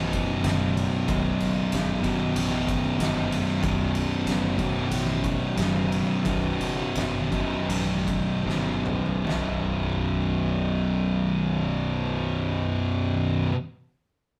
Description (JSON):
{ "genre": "stoner and doom metal", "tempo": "72-94 BPM", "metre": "4/4", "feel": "straight", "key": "unclear", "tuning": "A4 = 444 Hz", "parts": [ { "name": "thick fuzz guitar", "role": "riff", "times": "0.0-13.5 s", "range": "B1 to B2", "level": "-34 LUFS", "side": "equal", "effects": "none" }, { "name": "thick fuzz guitar", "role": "riff", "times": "0.0-13.5 s", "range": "B1 to B2", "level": "-28 LUFS", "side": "equal", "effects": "distortion" }, { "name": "fuzz fingered electric bass", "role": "bass", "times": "0.0-13.5 s", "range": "B0 to A1", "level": "-35 LUFS", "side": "equal", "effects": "overdrive" }, { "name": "oversized low-tuned drum kit", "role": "drums", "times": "0.1-9.5 s", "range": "kick drum, ride cymbal, snare drum, toms", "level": "-35 LUFS", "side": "equal", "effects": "none" } ], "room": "light reverb", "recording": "rough rehearsal-room recording, tube saturation", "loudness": "-26 LUFS", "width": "mono", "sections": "0.0-9.3 A section; 9.3-12.6 B section", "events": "slowing down 3.6-9.3; drum fill 8.5-9.3", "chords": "0.0 B5" }